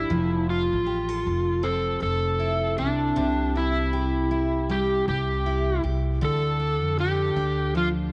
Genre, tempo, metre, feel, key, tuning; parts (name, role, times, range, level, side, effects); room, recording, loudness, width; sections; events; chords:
acoustic pop; 78 BPM; 4/4; swing 60% on 16ths; F major; A4 = 440 Hz
overdriven slide guitar; melody; 0.0-7.9 s; D4 to A4; -28 LUFS; equal
picked steel-string acoustic guitar; accompaniment; 0.0-8.1 s; C3 to A4; -31 LUFS; equal
upright bass; bass; 0.0-8.1 s; F1 to F2; -30 LUFS; equal
light reverb; nothing above 10.4 kHz; -25 LUFS; mono
0.0-8.1 A section
0.1 Fmaj7; 2.8 Cadd9; 6.2 Dm